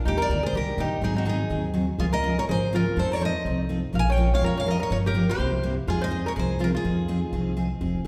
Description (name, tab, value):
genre	acoustic string swing (jazz manouche)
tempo	247 BPM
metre	4/4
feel	swing 55% on 8ths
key	F minor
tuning	A4 = 440 Hz
part	picked steel-string acoustic guitar	accompaniment	0.0-8.1 s	C3 to Bb4	-29 LUFS	equal	none
part	picked steel-string acoustic guitar	melody	0.1-7.6 s	Gb4 to Ab5	-32 LUFS	equal	none
part	lap resonator guitar	second line	0.1-7.6 s	Eb4 to F5	-33 LUFS	equal	none
part	upright bass	bass	0.1-8.1 s	F1 to F2	-30 LUFS	equal	none
room	wet recital hall reverb, RT60 1.6 s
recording	recorded in a church or concert hall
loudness	-25 LUFS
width	mono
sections	0.1-7.8 A section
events	none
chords	0.1 Ebmaj7; 1.0 Ab7; 2.0 Db6; 3.0 F7; 3.9 Bbm7; 4.9 Gm7b5; 5.4 C7; 5.9 Fm7